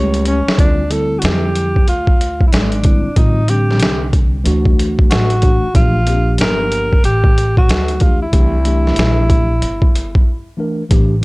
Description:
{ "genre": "hip hop, jazz-hop", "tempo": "93 BPM", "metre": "4/4", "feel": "swing 63% on 16ths", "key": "D minor", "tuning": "A4 = 441 Hz", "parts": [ { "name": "breathy alto saxophone", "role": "melody", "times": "0.0-10.6 s", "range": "C#4 to C#5", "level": "-19 LUFS", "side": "equal", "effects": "none" }, { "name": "mellow tine electric piano", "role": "accompaniment", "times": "0.0-11.2 s", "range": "D3 to Bb4", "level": "-20 LUFS", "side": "equal", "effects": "slow stereo tremolo" }, { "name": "upright bass", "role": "bass", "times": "0.0-11.2 s", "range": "G1 to F2", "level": "-17 LUFS", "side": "equal", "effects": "none" }, { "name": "boom bap sampler-style drum kit", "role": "drums", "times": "0.1-11.1 s", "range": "hi-hat, kick drum, snare drum", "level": "-14 LUFS", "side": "equal", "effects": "none" } ], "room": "little or no reverb", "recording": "dry, gritty hardware recording, cassette tape", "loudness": "-11 LUFS", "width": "side -23 dB against mid", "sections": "0.6-11.2 A section", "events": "drum fill 0.0-0.6; break 10.3-10.9", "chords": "0.0 A7; 0.6 Dm7; 3.2 F13/A; 4.5 D; 5.7 Bbmaj7; 8.3 C7" }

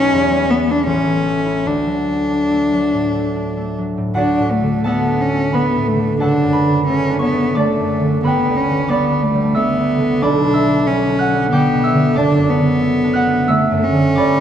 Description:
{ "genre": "classical, romantic duo for cello and harp", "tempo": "70-95 BPM", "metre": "3/4", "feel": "rubato", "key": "D major", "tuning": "A4 = 438 Hz", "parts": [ { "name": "rich cello", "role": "melody", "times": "0.0-14.4 s", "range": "A3 to D4", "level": "-17 LUFS", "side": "left 2 dB", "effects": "none" }, { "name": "concert harp", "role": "accompaniment", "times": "0.0-14.4 s", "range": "F#1 to G6", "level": "-17 LUFS", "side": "right 2 dB", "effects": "none" } ], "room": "wet concert hall reverb, RT60 2.3 s", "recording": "dark, warm production", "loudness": "-14 LUFS", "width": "side -9 dB against mid", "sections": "0.0-4.2 A section; 4.2-14.4 B section", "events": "none", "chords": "0.1 Em; 0.9 A; 1.7 D; 6.2 D/F#; 8.3 G; 10.2 G/B; 12.2 D/F#" }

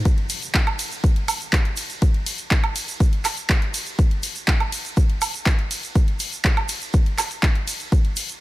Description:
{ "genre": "house", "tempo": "122 BPM", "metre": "4/4", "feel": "straight", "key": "none", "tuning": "none", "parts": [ { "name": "electronic kick drum", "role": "drums", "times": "0.1-8.0 s", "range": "none", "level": "-18 LUFS", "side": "equal", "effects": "studio reverb" }, { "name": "house drum kit", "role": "drums", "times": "0.1-8.4 s", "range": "handclaps, hi-hat, ride cymbal, woodblock", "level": "-25 LUFS", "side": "right 1 dB", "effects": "sidechain pumping on hats, studio reverb, sidechain pumping on cymbals, sidechain pumping on perc, sidechain pumping on toms" }, { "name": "egg shaker", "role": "percussion", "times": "0.1-8.4 s", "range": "none", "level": "-31 LUFS", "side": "right 4 dB", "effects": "none" } ], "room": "little or no reverb", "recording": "none", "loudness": "-19 LUFS", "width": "side -17 dB against mid", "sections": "0.0-8.4 A section", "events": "none", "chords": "none" }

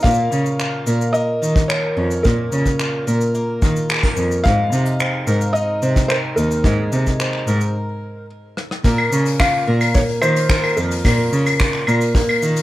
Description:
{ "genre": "folktronica", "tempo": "109 BPM", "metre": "4/4", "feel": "straight", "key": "Bb minor", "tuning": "A4 = 440 Hz", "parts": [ { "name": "felt-muted upright piano", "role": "melody", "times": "0.0-11.8 s", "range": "Bb4 to F5", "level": "-22 LUFS", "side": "equal", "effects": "vintage 12-bit sampler grit, ping-pong delay" }, { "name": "fingerpicked twelve-string acoustic guitar", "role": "arpeggios", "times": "0.0-12.6 s", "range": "Bb2 to Bb4", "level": "-24 LUFS", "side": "equal", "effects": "ping-pong delay" }, { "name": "rich cello", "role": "bass", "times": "0.0-12.5 s", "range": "Eb2 to Eb3", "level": "-19 LUFS", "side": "equal", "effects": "none" }, { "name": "kick drum", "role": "drums", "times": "0.0-12.3 s", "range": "none", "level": "-18 LUFS", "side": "equal", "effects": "none" }, { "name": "soft brush drum kit", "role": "drums", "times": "0.0-12.6 s", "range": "cabasa, claves, finger snaps, hi-hat, rim click", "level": "-23 LUFS", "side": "left 1 dB", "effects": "none" } ], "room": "little or no reverb", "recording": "none", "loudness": "-15 LUFS", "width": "side -15 dB against mid", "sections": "0.0-8.8 A section; 8.8-12.6 B section", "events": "break 7.8-8.8; drum fill 8.4-8.8; band accent 8.7", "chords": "0.0 Bbm; 4.4 Abadd9; 8.8 Bbm" }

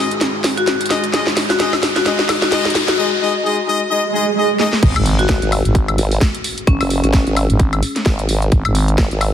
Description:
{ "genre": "bass house", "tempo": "130 BPM", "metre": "4/4", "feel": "swing 57% on 16ths", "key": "unclear", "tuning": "A4 = 439 Hz", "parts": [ { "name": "dark analog pad", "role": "sustained chords", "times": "0.0-9.3 s", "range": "G#3 to G#4", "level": "-32 LUFS", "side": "right 5 dB", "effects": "chorus, sidechain pumping" }, { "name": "bright horn section", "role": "stabs", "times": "0.0-4.7 s", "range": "G#3 to D#5", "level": "-20 LUFS", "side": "left 2 dB", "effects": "sidechain pumping, digital delay" }, { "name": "riser, swell and impact", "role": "sound effects", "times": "0.0-6.7 s", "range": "none", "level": "-23 LUFS", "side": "right 2 dB", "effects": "none" }, { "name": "garage drum kit", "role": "drums", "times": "0.1-9.3 s", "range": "crash cymbal, hi-hat, snare drum, woodblock", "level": "-19 LUFS", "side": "equal", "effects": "none" }, { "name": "marimba with hard mallets", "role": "melody", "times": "0.6-7.2 s", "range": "C#4 to F#4", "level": "-22 LUFS", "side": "left 4 dB", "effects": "digital delay" }, { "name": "growling FM bass", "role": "bass", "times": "4.8-9.0 s", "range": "G#1", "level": "-16 LUFS", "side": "equal", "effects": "overdrive, sidechain pumping" }, { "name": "electronic kick drum", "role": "drums", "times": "4.8-9.1 s", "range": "none", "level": "-13 LUFS", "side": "equal", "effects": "none" }, { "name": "formant-sweep wobble bass", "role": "bass", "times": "5.3-9.3 s", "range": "F#1 to G#1", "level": "-17 LUFS", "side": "equal", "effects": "chorus, sidechain pumping" } ], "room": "light reverb", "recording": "heavily compressed radio sound, multiband compression", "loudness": "-14 LUFS", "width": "side -10 dB against mid", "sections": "0.0-4.8 A section; 4.8-9.3 B section", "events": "build-up 0.0-4.8; drum fill 0.0-3.0, 4.6; riser 0.0-3.0; swell 4.1-4.8; drop 4.8-9.3; impact 4.8-6.7", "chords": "0.0 G#5" }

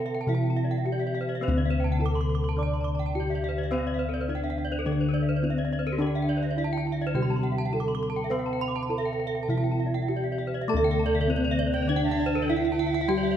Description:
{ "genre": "Balinese gamelan", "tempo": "103 BPM", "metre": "4/4", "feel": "uneven beats", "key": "D slendro", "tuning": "A4 = 439 Hz", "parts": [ { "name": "gamelan-type bronze metallophone", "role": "melody", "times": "0.0-13.4 s", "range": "C4-45c to D5", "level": "-30 LUFS", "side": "right 2 dB", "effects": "slapback echo" }, { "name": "gamelan-type bronze metallophone", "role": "accompaniment", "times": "0.0-13.4 s", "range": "D3 to D4", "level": "-35 LUFS", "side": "left 1 dB", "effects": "none" }, { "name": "gamelan-type bronze metallophone", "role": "arpeggios", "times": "0.0-13.3 s", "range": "A4+25c to D6", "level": "-35 LUFS", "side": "left 6 dB", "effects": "slapback echo" }, { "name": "gamelan-type bossed gongs", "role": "bass", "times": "0.0-13.4 s", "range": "D2 to C5-45c", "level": "-28 LUFS", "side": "left 1 dB", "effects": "none" }, { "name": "gamelan-type bronze metallophone", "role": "arpeggios", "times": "0.1-13.4 s", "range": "G4-35c to D6", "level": "-34 LUFS", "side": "right 4 dB", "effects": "none" }, { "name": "bright reedy alto recorder", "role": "second line", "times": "11.7-13.4 s", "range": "G5-36c to A5+30c", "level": "-38 LUFS", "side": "right 3 dB", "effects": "none" } ], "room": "light reverb", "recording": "none", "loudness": "-24 LUFS", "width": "side -10 dB against mid", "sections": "0.0-10.7 A section; 10.7-13.4 B section", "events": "none", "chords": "none" }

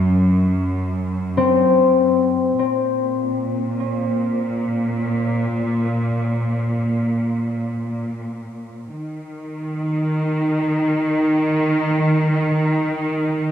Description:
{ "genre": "ambient", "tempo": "free time", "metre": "none", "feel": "none", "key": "unclear", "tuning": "A4 = 439 Hz", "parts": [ { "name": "muted symphonic cello section", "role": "bass", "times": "0.0-13.5 s", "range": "Gb2 to Eb3", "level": "-19 LUFS", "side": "right 1 dB", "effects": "tube saturation" }, { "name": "concert harp", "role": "arpeggios", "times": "1.4-4.4 s", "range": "C4", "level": "-19 LUFS", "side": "left 4 dB", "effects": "ping-pong delay" } ], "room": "moderate lush hall reverb, RT60 2.8 s", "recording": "dreamy mix soaked in reverb", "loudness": "-17 LUFS", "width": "side -9 dB against mid", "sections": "0.0-2.6 A section; 2.6-13.5 B section", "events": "none", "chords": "none" }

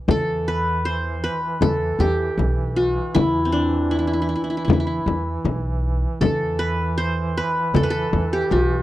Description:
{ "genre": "Arabic maqam ensemble", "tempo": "78 BPM", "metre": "4/4", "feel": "straight", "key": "E maqam bayati", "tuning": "A4 = 440 Hz", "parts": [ { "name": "qanun", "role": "melody", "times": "0.1-8.8 s", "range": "C4 to C5", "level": "-22 LUFS", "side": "equal", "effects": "none" }, { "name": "upright bass", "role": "bass", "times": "0.1-8.8 s", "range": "B1 to E2", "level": "-24 LUFS", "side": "equal", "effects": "none" }, { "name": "clear duduk", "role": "drone", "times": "0.1-8.8 s", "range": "E3", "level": "-30 LUFS", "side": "right 3 dB", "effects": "none" }, { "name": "darbuka", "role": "percussion", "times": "0.1-8.7 s", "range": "none", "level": "-28 LUFS", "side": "right 3 dB", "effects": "none" }, { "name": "frame drum", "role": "percussion", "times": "0.1-8.7 s", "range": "none", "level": "-22 LUFS", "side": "left 5 dB", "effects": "none" } ], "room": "studio reverb", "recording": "dry, close 1970s-style studio recording", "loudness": "-19 LUFS", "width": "side -15 dB against mid", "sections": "0.1-8.8 A section", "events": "none", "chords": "none" }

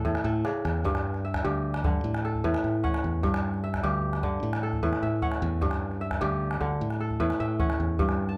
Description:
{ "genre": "west african traditional, West African string and xylophone music", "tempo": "101 BPM (dotted quarters)", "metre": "12/8", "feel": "straight", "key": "G lydian", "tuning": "A4 = 438 Hz", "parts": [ { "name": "kora", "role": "arpeggios", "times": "0.0-8.4 s", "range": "G2 to A5", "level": "-32 LUFS", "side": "equal", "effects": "none" }, { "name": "modern bright fingered electric bass", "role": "bass", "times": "0.0-8.4 s", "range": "D2 to A2", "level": "-32 LUFS", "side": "equal", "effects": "none" }, { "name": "calabash", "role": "percussion", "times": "0.1-8.2 s", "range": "none", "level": "-34 LUFS", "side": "equal", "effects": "none" } ], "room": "moderate large studio reverb, RT60 0.8 s", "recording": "band playing live in one room", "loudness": "-28 LUFS", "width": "mono", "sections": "0.8-8.4 A section", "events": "drum fill 0.2-0.8", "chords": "0.0 A; 0.8 G5; 2.0 A; 3.2 G5; 4.4 A; 5.6 G5; 6.8 A" }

